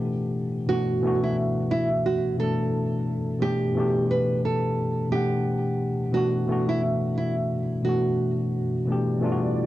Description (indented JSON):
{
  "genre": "lo-fi hip hop",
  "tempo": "88 BPM",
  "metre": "4/4",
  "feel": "swing 58% on 16ths",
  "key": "E minor",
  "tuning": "A4 = 442 Hz",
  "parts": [
    { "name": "nylon-string guitar", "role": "melody", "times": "0.0-8.8 s", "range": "E4 to B4", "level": "-27 LUFS", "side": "right 3 dB", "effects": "low-pass filter, plate reverb, tape echo" },
    { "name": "mellow tine electric piano", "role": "accompaniment", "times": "0.0-9.7 s", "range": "B2 to F#5", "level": "-24 LUFS", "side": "left 1 dB", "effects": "overdrive, low-pass filter" },
    { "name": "warbly tape-like pad", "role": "sustained chords", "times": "9.0-9.7 s", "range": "G3 to D5", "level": "-32 LUFS", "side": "right 4 dB", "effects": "chorus, built-in reverb, low-pass filter" }
  ],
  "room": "moderate studio reverb, RT60 0.5 s",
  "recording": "dark, warm production",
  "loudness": "-22 LUFS",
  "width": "side -14 dB against mid",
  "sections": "0.0-9.7 A section",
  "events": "none",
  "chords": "0.0 Em7; 0.7 Bm7; 3.4 Em7; 6.1 Bm7; 8.9 Em7"
}